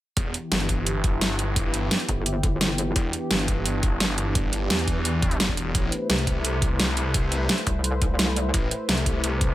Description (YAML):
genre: dark technical drum and bass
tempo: 172 BPM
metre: 4/4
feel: straight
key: E minor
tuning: A4 = 439 Hz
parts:
  - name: sweeping resonant pad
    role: sustained chords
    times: 0.2-9.5 s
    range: E3 to C5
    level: -30 LUFS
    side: left 1 dB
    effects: chorus, sidechain pumping
  - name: snarling distorted saw bass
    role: bass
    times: 0.2-9.5 s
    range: E1 to E2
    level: -26 LUFS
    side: equal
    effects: distortion
  - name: dubstep drum kit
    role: drums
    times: 0.2-9.5 s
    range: hi-hat, snare drum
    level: -25 LUFS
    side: right 1 dB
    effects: none
  - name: electronic kick drum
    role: drums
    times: 0.2-9.5 s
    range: none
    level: -25 LUFS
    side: equal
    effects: none
  - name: pulsing pluck wobble bass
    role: bass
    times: 2.1-2.9, 7.7-8.5 s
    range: G1 to C2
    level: -25 LUFS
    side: equal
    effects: chorus
room: light reverb, digital ambience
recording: none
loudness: -22 LUFS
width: side -15 dB against mid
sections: 0.2-9.5 A section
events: none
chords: 0.2 Em; 5.7 Am